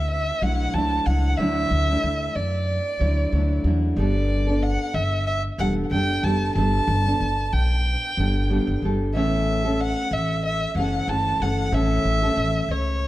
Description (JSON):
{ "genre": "acoustic pop", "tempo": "93 BPM", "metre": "4/4", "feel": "swing 55% on 16ths", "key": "D major", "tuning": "A4 = 437 Hz", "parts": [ { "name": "dark violin", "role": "melody", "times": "0.0-13.1 s", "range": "C#5 to A5", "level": "-26 LUFS", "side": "right 1 dB", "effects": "tape echo" }, { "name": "nylon-string guitar", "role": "accompaniment", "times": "0.0-13.1 s", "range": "A2 to A4", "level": "-26 LUFS", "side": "equal", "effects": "none" }, { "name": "upright bass", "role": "bass", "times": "0.0-13.1 s", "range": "E1 to F#2", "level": "-23 LUFS", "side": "equal", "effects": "none" } ], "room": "moderate studio reverb, RT60 0.6 s", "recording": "dark, warm production, lossy compression artefacts", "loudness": "-20 LUFS", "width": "side -16 dB against mid", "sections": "0.0-13.1 A section", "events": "none", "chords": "0.0 Dadd9; 4.0 Gadd9; 9.1 A" }